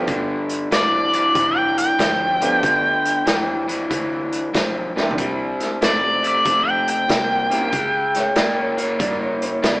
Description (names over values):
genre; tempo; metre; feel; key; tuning
electric blues shuffle; 94 BPM; 4/4; swing 66% on 8ths; unclear; A4 = 440 Hz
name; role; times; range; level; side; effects
clear upright piano; accompaniment; 0.0-7.7 s; A3 to G4; -26 LUFS; right 1 dB; none
crunchy overdriven guitar; riff; 0.0-9.8 s; G2 to B3; -23 LUFS; left 1 dB; none
vintage muted fingered electric bass; bass; 0.1-9.8 s; F1 to Bb2; -38 LUFS; equal; none
vintage drum kit; drums; 0.1-9.8 s; hi-hat, kick drum, snare drum, toms; -23 LUFS; equal; none
biting lead guitar; melody; 0.7-8.8 s; D5 to G5; -18 LUFS; equal; overdrive
electric guitar through a small old amp; second line; 8.2-9.8 s; C#5 to D5; -24 LUFS; right 1 dB; none
room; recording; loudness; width
wet stone room reverb, RT60 1.3 s; band playing live in one room, small speaker sound; -17 LUFS; side -22 dB against mid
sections
0.0-9.8 A section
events
drum fill 4.9-5.2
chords
0.0 G7; 5.2 C7; 7.7 C#5